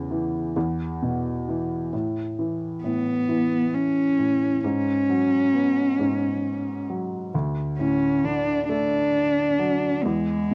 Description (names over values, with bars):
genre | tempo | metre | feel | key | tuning
acoustic folk-pop ballad | 44 BPM (dotted quarters) | 6/8 | straight | A major | A4 = 440 Hz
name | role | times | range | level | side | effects
warm upright piano | accompaniment | 0.0-10.5 s | D2 to B3 | -29 LUFS | equal | cassette tape
warm cello | melody | 2.8-10.5 s | G#3 to D4 | -24 LUFS | equal | cassette tape
room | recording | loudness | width
light reverb | home recording on cassette | -24 LUFS | mono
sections
0.0-1.9 A section; 1.9-10.5 A section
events
none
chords
0.0 C#m/E; 0.6 E5; 1.9 Aadd9; 4.6 F#sus24/G#; 7.3 D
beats
0.56 | 1.93 3.29 | 4.64 6.00 | 7.34 8.68 | 10.04